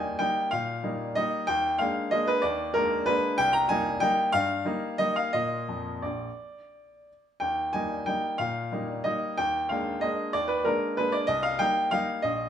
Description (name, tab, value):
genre	classical, piano waltz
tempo	167-202 BPM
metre	3/4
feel	rubato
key	unclear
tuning	A4 = 440 Hz
part	clear baby grand piano	solo	0.0-12.5 s	Bb1 to Bb5	-25 LUFS	equal	none
room	wet stone room reverb, RT60 1.1 s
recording	none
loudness	-25 LUFS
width	side -9 dB against mid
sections	0.0-12.5 A section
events	none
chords	0.0 Eb; 1.5 Bb7b9/Eb; 3.4 Cm7; 5.3 Bb; 7.4 Eb; 9.4 Bb7/Eb; 11.3 Cm7